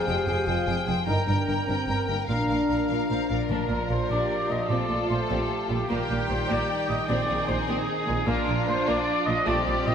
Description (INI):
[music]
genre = cinematic, heroic adventure film score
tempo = 100 BPM (dotted quarters)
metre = 6/8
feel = straight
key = Bb major from 3.5 s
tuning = A4 = 441 Hz
[part]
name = rich symphonic violin section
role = melody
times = 0.0-9.9 s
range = F4 to G5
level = -33 LUFS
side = left 6 dB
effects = none
[part]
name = bright flute section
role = second line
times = 0.0-3.3 s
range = Ab5 to Bb5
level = -35 LUFS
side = equal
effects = none
[part]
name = clear clarinet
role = second line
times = 0.0-3.5 s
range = Bb4 to D5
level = -37 LUFS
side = left 1 dB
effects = none
[part]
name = rich symphonic violin section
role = second line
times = 0.0-9.9 s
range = G3 to C5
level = -34 LUFS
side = left 3 dB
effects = none
[part]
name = warm oboe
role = second line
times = 0.0-3.3 s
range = F5 to G5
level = -37 LUFS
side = equal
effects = none
[part]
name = rich symphonic viola section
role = accompaniment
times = 0.0-9.9 s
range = D4 to G5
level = -34 LUFS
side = right 1 dB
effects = none
[part]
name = mellow French horn section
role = sustained chords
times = 0.0-3.3 s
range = Bb3 to G4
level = -29 LUFS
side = left 2 dB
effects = none
[part]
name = rich symphonic double bass section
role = bass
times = 0.1-9.9 s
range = F1 to Bb1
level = -31 LUFS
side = right 2 dB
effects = none
[part]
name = warm symphonic cello section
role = bass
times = 0.1-9.9 s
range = F2 to Bb2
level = -31 LUFS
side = right 2 dB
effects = none
[part]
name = timpani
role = percussion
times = 2.3-4.1 s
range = Bb2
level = -37 LUFS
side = left 1 dB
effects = none
[part]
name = warm trombone section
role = sustained chords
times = 3.5-9.9 s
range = Eb3 to D4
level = -33 LUFS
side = right 2 dB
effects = none
[part]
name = mellow trumpet section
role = stabs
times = 3.5-9.9 s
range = G4 to Eb5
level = -28 LUFS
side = equal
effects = none
[sound]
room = wet scoring stage reverb, RT60 2.0 s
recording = none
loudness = -23 LUFS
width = side -8 dB against mid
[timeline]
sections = 0.0-3.5 A section; 3.5-9.9 B section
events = none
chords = 0.0 Fmadd9; 1.1 Gmadd11; 2.3 Bb; 4.7 Fadd9/Bb; 5.9 Eb/Bb; 7.1 Ab/Bb; 8.3 Bb